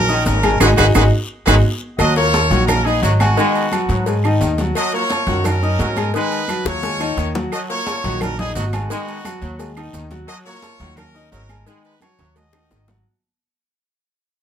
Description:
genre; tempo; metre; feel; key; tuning
latin, salsa; 174 BPM; 4/4; straight; Eb minor; A4 = 438 Hz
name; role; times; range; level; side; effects
brilliant horn section; melody; 0.0-12.9 s; Bb3 to Eb5; -21 LUFS; equal; none
clear baby grand piano; accompaniment; 0.0-13.0 s; Eb3 to Eb6; -22 LUFS; left 3 dB; none
upright bass; bass; 0.0-13.0 s; Ab1 to Ab2; -18 LUFS; equal; none
bright trombone section; second line; 0.1-12.9 s; Eb3 to Ab3; -25 LUFS; right 1 dB; none
congas; percussion; 0.1-13.1 s; none; -27 LUFS; equal; none
maracas; percussion; 0.1-13.1 s; none; -34 LUFS; right 6 dB; none
agogo bells and timbales; percussion; 0.3-13.1 s; none; -28 LUFS; right 6 dB; none
cowbell and bongos; percussion; 0.3-13.1 s; none; -30 LUFS; left 6 dB; none
guiro; percussion; 0.3-13.1 s; none; -38 LUFS; left 5 dB; none
claves; percussion; 0.4-12.7 s; none; -28 LUFS; right 7 dB; none
room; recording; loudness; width
light reverb; close, detailed microphones; -15 LUFS; side -9 dB against mid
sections
0.0-2.0 A section; 2.0-13.1 A section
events
drum fill 0.6-2.0, 6.7-7.5, 12.0-13.1; band accent 0.6-2.0; fade-out 2.0-13.1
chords
0.0 Eb7(no3); 0.6 Abm7; 2.0 Ebm7; 3.4 Abm7; 4.8 Ebm7; 6.1 Abm7; 7.5 Ebm7; 8.9 Abm7; 10.3 Ebm7; 11.7 Abm7

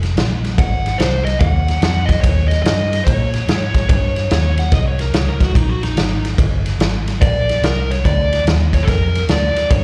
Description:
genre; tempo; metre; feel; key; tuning
electric blues shuffle; 144 BPM; 4/4; swing 64% on 8ths; unclear; A4 = 438 Hz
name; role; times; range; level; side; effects
vintage muted fingered electric bass; bass; 0.0-9.8 s; F1 to Bb2; -20 LUFS; equal; none
raw garage drum kit; drums; 0.0-9.8 s; kick drum, ride cymbal, snare drum; -19 LUFS; equal; none
dark smooth lead guitar; melody; 0.6-4.5, 7.2-9.8 s; A4 to Gb5; -23 LUFS; equal; overdrive, plate reverb, slapback echo
overdriven slide guitar; second line; 4.6-6.2 s; Eb4 to Gb5; -27 LUFS; equal; plate reverb, slapback echo
room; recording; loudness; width
little or no reverb; live gig heard through the venue's PA, club reverb; -16 LUFS; mono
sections
0.0-9.8 A section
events
none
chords
0.0 Ebsus2 (rootless); 0.6 Ab7; 2.2 Eb7; 7.2 Bbadd9

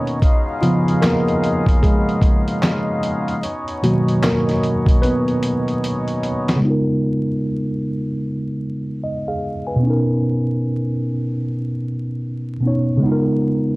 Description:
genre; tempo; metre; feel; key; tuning
lo-fi hip hop; 75 BPM; 4/4; swing 62% on 16ths; unclear; A4 = 440 Hz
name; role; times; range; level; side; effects
tine electric piano; accompaniment; 0.0-13.8 s; B2 to G#5; -18 LUFS; equal; medium stereo tremolo, cassette tape, low-pass filter
mellow accordion; sustained chords; 0.0-6.6 s; B2 to E#4; -24 LUFS; left 2 dB; low-pass filter
dusty soul sampler-style drum kit; drums; 0.1-6.6 s; handclaps, hi-hat, kick drum, snare drum; -17 LUFS; equal; none
room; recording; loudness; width
moderate studio ambience, RT60 0.5 s; dark, warm production, vinyl crackle; -17 LUFS; side -22 dB against mid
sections
0.0-6.6 A section; 6.6-13.8 B section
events
tine electric piano solo 0.0-6.6; drum fill 5.0-6.6; filter sweep on tine electric piano 6.6-13.8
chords
0.2 C#13; 3.4 Bmaj9; 6.6 C#13; 9.8 Bmaj9; 13.0 C#13

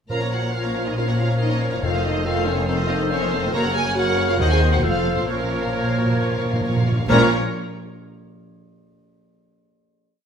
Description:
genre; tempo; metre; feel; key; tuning
quick classical-period movement for symphony orchestra; 137 BPM; 4/4; straight; Bb minor; A4 = 440 Hz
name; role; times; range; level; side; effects
warm symphonic violin section; melody; 0.1-7.3 s; Bb4 to Bb5; -29 LUFS; left 1 dB; none
bright flute section; second line; 0.1-7.3 s; C5 to Db5; -30 LUFS; left 1 dB; none
warm clarinet; second line; 0.1-7.3 s; A4 to C5; -28 LUFS; left 3 dB; none
warm symphonic violin section; second line; 0.1-7.3 s; A4 to Bb5; -30 LUFS; equal; none
dark studio viola section; accompaniment; 0.1-7.3 s; A3 to Bb4; -29 LUFS; right 1 dB; none
mellow bassoon; accompaniment; 0.1-7.3 s; Db3 to F3; -30 LUFS; right 1 dB; none
dark French horn section; sustained chords; 0.1-7.3 s; Bb3 to Bb4; -26 LUFS; equal; none
warm chamber cello section; bass; 0.1-7.3 s; Eb2 to Bb2; -27 LUFS; equal; none
warm symphonic double bass section; bass; 0.1-7.3 s; F1 to Eb2; -25 LUFS; right 1 dB; none
timpani; percussion; 0.1-2.4, 5.3-7.3 s; F2 to Bb2; -26 LUFS; right 1 dB; none
room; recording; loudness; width
wet stone room reverb, RT60 1.3 s; none; -18 LUFS; side -7 dB against mid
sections
0.1-7.1 A section; 7.1-8.9 final chord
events
timpani fill 5.3-7.1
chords
0.1 Bbm; 1.8 F7; 3.5 Gb; 4.4 Cdim/Eb; 4.8 F; 5.3 Bbm

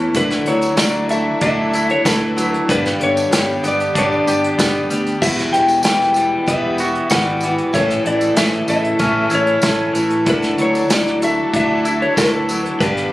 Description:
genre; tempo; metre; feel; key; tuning
folk rock and heartland rock; 95 BPM; 4/4; straight; D major; A4 = 443 Hz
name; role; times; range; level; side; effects
picked steel-string acoustic guitar; accompaniment; 0.0-13.1 s; E2 to G4; -22 LUFS; left 2 dB; none
warm grand piano; accompaniment; 0.0-13.1 s; D4 to G5; -26 LUFS; right 1 dB; none
rich studio string section; sustained chords; 0.0-13.1 s; C#3 to B4; -28 LUFS; equal; none
twangy electric guitar; riff; 0.0-13.1 s; E2 to G4; -21 LUFS; right 1 dB; none
fingered electric bass; bass; 0.0-13.0 s; E1 to D2; -25 LUFS; equal; none
soft brush drum kit; drums; 0.1-13.1 s; crash cymbal, hi-hat, kick drum, snare drum; -21 LUFS; equal; none
tambourine; percussion; 0.1-12.9 s; none; -30 LUFS; right 1 dB; none
electric slide guitar; melody; 0.2-13.1 s; B4 to G5; -19 LUFS; left 1 dB; slapback echo
room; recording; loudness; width
light reverb, small room ambience; recorded on a phone in the room, club ambience; -14 LUFS; side -16 dB against mid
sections
0.0-13.1 A section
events
none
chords
0.2 Dadd9; 2.7 G; 5.2 Emadd9; 7.7 A; 10.3 Dadd9

